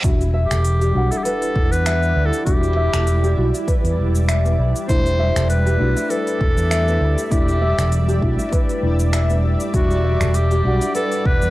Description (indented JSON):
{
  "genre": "organic downtempo",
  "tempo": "99 BPM",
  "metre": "4/4",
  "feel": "swing 55% on 16ths",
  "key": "E minor",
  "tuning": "A4 = 440 Hz",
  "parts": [
    { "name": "muted felt-like synth keys", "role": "accompaniment", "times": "0.0-11.5 s", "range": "G3 to F#5", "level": "-27 LUFS", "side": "left 2 dB", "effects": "chorus, sidechain pumping" },
    { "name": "granular cloud pad", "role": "sustained chords", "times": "0.0-11.5 s", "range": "G3 to E5", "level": "-27 LUFS", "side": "right 1 dB", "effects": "built-in reverb, sidechain pumping" },
    { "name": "nylon-string guitar", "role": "arpeggios", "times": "0.0-11.5 s", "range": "B3 to E5", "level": "-25 LUFS", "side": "left 1 dB", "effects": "tape echo" },
    { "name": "fretless electric bass", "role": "bass", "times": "0.0-11.5 s", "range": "E1 to E2", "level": "-18 LUFS", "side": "equal", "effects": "none" },
    { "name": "afro-pop drum kit", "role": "drums", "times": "0.0-11.5 s", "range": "cabasa, finger snaps, hi-hat", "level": "-29 LUFS", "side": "equal", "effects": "none" },
    { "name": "electronic kick drum", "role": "drums", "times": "0.0-11.4 s", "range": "none", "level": "-19 LUFS", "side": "equal", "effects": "none" },
    { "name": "reverse cymbal and impact", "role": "sound effects", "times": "0.0-2.5 s", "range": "none", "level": "-30 LUFS", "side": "right 1 dB", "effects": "none" },
    { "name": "clear clarinet", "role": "melody", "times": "0.4-11.5 s", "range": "F#4 to C5", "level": "-24 LUFS", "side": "equal", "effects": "tape echo" }
  ],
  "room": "little or no reverb",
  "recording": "dry, gritty hardware recording, cassette tape",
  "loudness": "-16 LUFS",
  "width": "side -17 dB against mid",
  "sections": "0.0-11.5 A section",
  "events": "impact 0.0-2.5",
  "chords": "0.0 Em11"
}